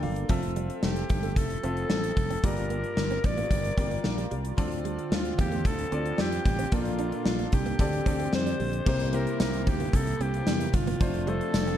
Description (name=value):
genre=1980s-style pop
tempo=112 BPM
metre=4/4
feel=straight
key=unclear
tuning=A4 = 444 Hz
part: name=raspy alto saxophone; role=melody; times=0.0-11.8 s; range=F4 to D5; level=-33 LUFS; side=equal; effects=ping-pong delay
part: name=clear concert grand piano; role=accompaniment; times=0.0-11.8 s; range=G2 to A5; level=-35 LUFS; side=left 2 dB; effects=none
part: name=chorused pulse-width pad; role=sustained chords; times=0.0-11.8 s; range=C3 to E5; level=-37 LUFS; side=equal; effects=none
part: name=direct-recorded clean electric guitar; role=riff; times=0.0-11.8 s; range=F3 to D4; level=-38 LUFS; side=right 7 dB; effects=analog chorus
part: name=sustaining fretless electric bass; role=bass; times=0.0-11.7 s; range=F1 to F2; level=-31 LUFS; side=equal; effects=analog chorus
part: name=gated 80s drum kit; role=drums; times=0.0-11.8 s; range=crash cymbal, hi-hat, kick drum, snare drum, tambourine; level=-28 LUFS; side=equal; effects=none
part: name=distorted electric guitar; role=accompaniment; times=8.9-11.8 s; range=F2 to C4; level=-38 LUFS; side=left 1 dB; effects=none
room=light reverb, studio reverb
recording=dark, warm production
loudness=-25 LUFS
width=side -10 dB against mid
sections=0.0-8.9 A section; 8.9-11.8 B section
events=grand piano fill 0.0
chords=0.3 Fmaj7; 2.4 Gm7; 4.6 Dm7; 6.7 Bbmaj7; 7.8 D7sus4; 8.9 C7; 11.0 F6